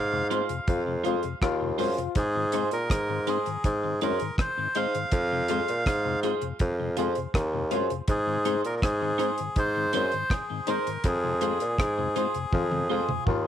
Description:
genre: roots reggae.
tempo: 81 BPM.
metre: 4/4.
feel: straight.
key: unclear.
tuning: A4 = 441 Hz.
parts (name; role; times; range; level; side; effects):
melodica; melody; 0.0-13.2 s; Ab4 to F5; -31 LUFS; equal; tape echo.
warm bassoon; bass; 0.0-13.5 s; Eb2 to Bb2; -28 LUFS; right 1 dB; none.
clean electric guitar; accompaniment; 0.1-13.1 s; Eb4 to C5; -34 LUFS; right 11 dB; analog chorus, tape echo.
mellow tonewheel organ; accompaniment; 0.1-13.2 s; F2 to F4; -36 LUFS; left 8 dB; chorus vibrato, stopped rotary speaker, tape echo.
reed electric piano; stabs; 0.3-13.1 s; Eb4 to C5; -35 LUFS; left 11 dB; phaser.
deep reggae drum kit; drums; 0.3-13.4 s; hi-hat, kick drum, rim click, toms; -28 LUFS; equal; none.
breathy trombone; second line; 0.7-2.1, 12.5-13.5 s; F4; -34 LUFS; left 12 dB; tape echo.
room: light reverb, small room reverb.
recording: 1960s-style stereo with parts hard left and right.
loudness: -24 LUFS.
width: side -10 dB against mid.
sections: 0.0-13.5 A section.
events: band accent 0.0-2.2, 11.0-13.5; drum fill 12.5-13.5.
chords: 0.0 Fm; 2.2 Ab; 5.1 Fm; 8.1 Ab; 11.0 Fm.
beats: 0.68 1.42 | 2.16 2.90 3.64 4.38 | 5.12 5.86 6.60 7.34 | 8.08 8.82 9.56 10.30 | 11.04 11.79 12.53 13.27.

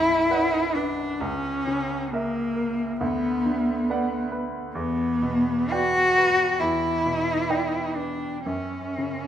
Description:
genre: classical, romantic duo for cello and grand piano.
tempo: 58-70 BPM.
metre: 4/4.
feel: rubato.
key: B minor.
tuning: A4 = 441 Hz.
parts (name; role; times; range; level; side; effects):
warm cello; melody; 0.0-9.3 s; A#3 to F#4; -23 LUFS; left 1 dB; none.
clear grand piano; accompaniment; 0.0-9.3 s; B1 to G5; -29 LUFS; right 2 dB; none.
room: moderate recital hall reverb, RT60 1.6 s.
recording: none.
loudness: -22 LUFS.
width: side -10 dB against mid.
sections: 0.0-9.3 A section.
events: none.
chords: 0.0 Bm; 1.2 A#dim/C#; 3.0 Bm/D; 4.8 Em7; 8.4 F#5.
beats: 0.30 | 1.21 2.12 3.01 3.88 | 4.75 5.71 6.59 7.48 | 8.45.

